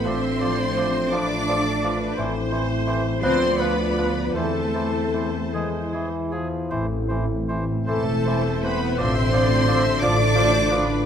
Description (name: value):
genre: classical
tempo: 50-58 BPM (dotted quarters)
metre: 6/8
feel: rubato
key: A minor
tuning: A4 = 440 Hz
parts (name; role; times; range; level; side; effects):
- warm studio violin section; melody; 0.0-11.1 s; A5 to D6; -30 LUFS; left 2 dB; none
- large flute ensemble; second line; 0.0-11.1 s; A4 to D5; -29 LUFS; left 2 dB; none
- mellow clarinet; second line; 0.0-11.1 s; A4 to D5; -30 LUFS; left 2 dB; none
- warm studio violin section; second line; 0.0-11.1 s; A4 to D5; -32 LUFS; left 2 dB; none
- rich studio viola section; accompaniment; 0.0-11.1 s; A4 to E5; -33 LUFS; right 1 dB; none
- mellow trombone section; sustained chords; 0.0-11.1 s; A2 to A3; -32 LUFS; right 4 dB; none
- warm French horn section; sustained chords; 0.0-11.1 s; B3 to F4; -30 LUFS; left 3 dB; none
- concert harp; arpeggios; 0.0-11.1 s; A2 to D5; -30 LUFS; left 10 dB; none
- rich studio cello section; bass; 0.0-11.1 s; A3 to D4; -28 LUFS; right 2 dB; none
- rich studio double bass section; bass; 0.0-10.9 s; E1 to E2; -26 LUFS; right 3 dB; none
- warm oboe; second line; 0.1-10.9 s; G#4 to D5; -32 LUFS; right 1 dB; none
- warm bassoon; accompaniment; 0.1-10.9 s; E3 to G#3; -32 LUFS; right 2 dB; none
room: moderate scoring stage reverb, RT60 1.6 s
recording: faint mains hum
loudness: -20 LUFS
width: side -8 dB against mid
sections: 0.0-11.1 A section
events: none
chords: 0.1 Dm/A; 2.2 Am; 3.2 Bdim/D; 4.4 Am/E; 5.5 E; 6.7 Am; 9.0 Dm/A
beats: | 0.07 1.14 | 2.18 3.24 | 4.36 5.54 | 6.72 7.89 | 9.00 10.03